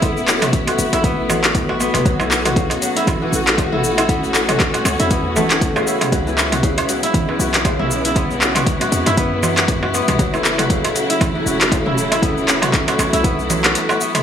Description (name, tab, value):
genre	afro house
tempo	118 BPM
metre	4/4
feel	swing 56% on 16ths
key	F# minor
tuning	A4 = 440 Hz
part	rich symphonic string section	sustained chords	0.0-14.2 s	C#3 to F#4	-22 LUFS	left 1 dB	sidechain pumping
part	kora	arpeggios	0.0-14.2 s	C#3 to F#4	-20 LUFS	equal	sidechain pumping, tape echo
part	warm 808-style bass	bass	0.0-13.8 s	D1 to F#2	-26 LUFS	equal	sidechain pumping
part	deep house drum kit	drums	0.0-14.2 s	handclaps, hi-hat, shaker, toms	-20 LUFS	left 1 dB	overdrive
part	electronic kick drum	drums	0.0-13.4 s	none	-20 LUFS	equal	overdrive
part	darbuka	percussion	0.0-14.2 s	none	-24 LUFS	right 4 dB	none
room	moderate recital hall reverb, RT60 1.4 s, small room ambience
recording	small room reverb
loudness	-14 LUFS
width	side -8 dB against mid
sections	0.0-14.2 A section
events	none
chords	0.0 E7sus4; 2.1 B5; 6.1 C#m7; 10.2 F#m7